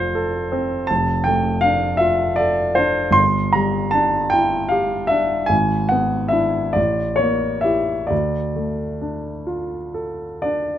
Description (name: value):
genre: classical, romantic nocturne for solo piano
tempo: 39-54 BPM (dotted quarters)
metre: 6/8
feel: rubato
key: D minor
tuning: A4 = 445 Hz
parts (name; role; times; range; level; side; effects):
- warm baby grand piano; solo; 0.0-10.8 s; F1 to C6; -17 LUFS; equal; none
room: little or no reverb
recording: close, detailed microphones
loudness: -17 LUFS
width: side -11 dB against mid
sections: 0.0-10.8 A section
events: none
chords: 0.0 F; 0.9 Dm/F; 3.2 Gm13; 5.5 E7/G#; 6.8 A5; 8.1 Dm